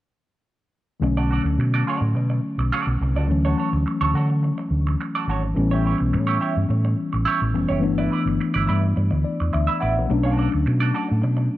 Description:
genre	disco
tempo	106 BPM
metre	4/4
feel	straight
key	unclear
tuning	A4 = 441 Hz
part	mellow tine electric piano	accompaniment	1.0-11.6 s	D3 to F#5	-24 LUFS	left 3 dB	slow stereo tremolo
part	semi-hollow electric guitar	accompaniment	1.0-11.4 s	E4 to E5	-27 LUFS	right 6 dB	wah, spring reverb
part	fingered electric bass	bass	1.0-11.5 s	F1 to D3	-21 LUFS	equal	none
room	little or no reverb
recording	dry, close 1970s-style studio recording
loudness	-19 LUFS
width	side -15 dB against mid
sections	1.0-11.6 A section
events	tine electric piano fill 9.0-10.1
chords	1.0 Bm7; 3.3 Dmaj7; 5.6 A7; 7.8 G6; 10.1 Bm7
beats	| 1.01 1.58 2.15 2.72 | 3.29 3.86 4.42 4.99 | 5.56 6.13 6.70 7.26 | 7.83 8.40 8.97 9.53 | 10.10 10.67 11.23

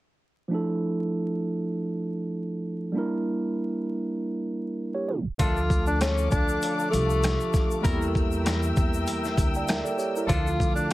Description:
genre	hip hop, boom-bap hip-hop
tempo	98 BPM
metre	4/4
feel	swing 56% on 16ths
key	D minor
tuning	A4 = 440 Hz
part	mellow tine electric piano	accompaniment	0.5-10.9 s	D3 to G5	-28 LUFS	right 2 dB	cassette tape, high-pass filter, low-pass filter
part	breathy tenor saxophone	melody	5.4-10.9 s	A3 to F4	-29 LUFS	left 2 dB	high-pass filter, low-pass filter, ping-pong delay
part	dark studio string section	sustained chords	5.4-10.9 s	A4 to E6	-34 LUFS	left 4 dB	high-pass filter, low-pass filter
part	dark trumpet section	stabs	5.4-10.5 s	G3 to Bb4	-37 LUFS	left 3 dB	high-pass filter, low-pass filter, ping-pong delay
part	upright bass	bass	5.4-10.9 s	C2 to E2	-28 LUFS	equal	none
part	boom bap sampler-style drum kit	drums	5.4-10.9 s	hi-hat, kick drum, rim click, shaker, snare drum	-26 LUFS	equal	none
part	egg shaker	percussion	5.4-10.9 s	none	-44 LUFS	left 7 dB	none
room	moderate studio reverb, RT60 0.6 s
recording	heavily compressed radio sound, vinyl crackle, tape stop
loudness	-24 LUFS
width	side -17 dB against mid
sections	0.5-5.4 A section; 5.4-10.9 B section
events	tape stop 5.1-5.4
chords	0.5 Dmadd9; 2.9 Em7b5; 5.4 Dm; 7.8 Edim; 10.3 Dm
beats	| 0.50 1.11 1.72 2.33 | 2.95 3.56 4.17 4.78 | 5.39 6.01 6.62 7.23 | 7.84 8.46 9.07 9.68 | 10.29 10.91

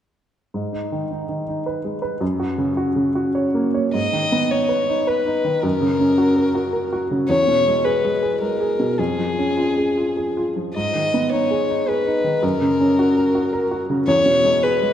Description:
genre	neoclassical piano and strings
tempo	107 BPM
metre	3/4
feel	rubato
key	G# minor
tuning	A4 = 440 Hz
part	clear upright piano	accompaniment	0.5-14.9 s	E2 to C#5	-19 LUFS	equal	none
part	dark violin	melody	3.9-14.9 s	G#4 to D#5	-20 LUFS	left 2 dB	none
room	wet concert hall reverb, RT60 2.1 s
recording	none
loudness	-17 LUFS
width	side -10 dB against mid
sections	0.5-3.9 A section; 3.9-14.9 B section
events	none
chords	0.5 G#m; 2.2 F#; 3.9 G#m; 5.6 F#; 7.3 E; 9.0 C#/E#; 10.8 G#m; 12.4 F#; 14.1 E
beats	| 0.54 1.10 1.66 | 2.21 2.77 3.35 | 3.94 4.51 5.08 | 5.64 6.18 6.74 | 7.29 7.84 8.40 | 8.98 9.57 10.16 | 10.75 11.32 11.88 | 12.43 12.98 13.52 | 14.07 14.63

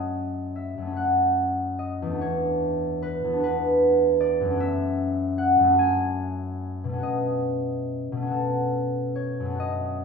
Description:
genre	classical, solo harp piece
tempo	46-52 BPM (dotted quarters)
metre	6/8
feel	rubato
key	F# minor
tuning	A4 = 440 Hz
part	concert harp	solo	0.0-10.0 s	E2 to G#5	-22 LUFS	equal	none
room	wet recital hall reverb, RT60 1.3 s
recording	recorded in a church or concert hall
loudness	-22 LUFS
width	side -5 dB against mid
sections	0.0-10.0 A section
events	none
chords	0.0 F#m6; 2.2 E9sus4; 4.6 F#madd9; 7.0 B9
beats	0.96 | 2.22 3.43 | 4.60 5.77 | 7.02 8.31 | 9.58

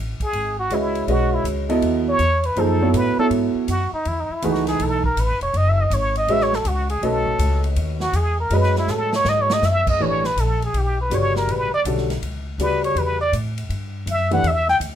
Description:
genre	modal jazz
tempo	162 BPM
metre	4/4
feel	swing 66% on 8ths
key	B mixolydian, A mixolydian from 10.0 s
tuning	A4 = 440 Hz
part	upright bass	bass	0.0-15.0 s	E1 to A2	-23 LUFS	left 1 dB	none
part	trumpet with plunger mute	melody	0.2-14.8 s	D#4 to G5	-21 LUFS	equal	none
part	swinging big-band drum kit	drums	0.2-14.9 s	crash cymbal, hi-hat, kick drum, ride cymbal, snare drum	-32 LUFS	right 1 dB	none
part	warm concert grand piano	accompaniment	0.7-14.4 s	C#3 to D#5	-22 LUFS	right 2 dB	none
room	light reverb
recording	minimal, uncompressed stereo recording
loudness	-18 LUFS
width	side -10 dB against mid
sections	0.0-10.0 A section; 10.0-15.0 A section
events	muted trumpet solo 0.0-15.0; drum fill 8.9-9.6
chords	0.0 B13sus4; 10.0 A9sus4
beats	0.33 0.70 | 1.08 1.45 1.82 2.19 | 2.56 2.94 3.31 3.68 | 4.05 4.42 4.80 5.17 | 5.54 5.91 6.28 6.66 | 7.03 7.40 7.77 8.14 | 8.51 8.88 9.25 9.62 | 9.99 10.37 10.73 11.11 | 11.48 11.85 12.22 12.59 | 12.96 13.33 13.70 14.07 | 14.44 14.81

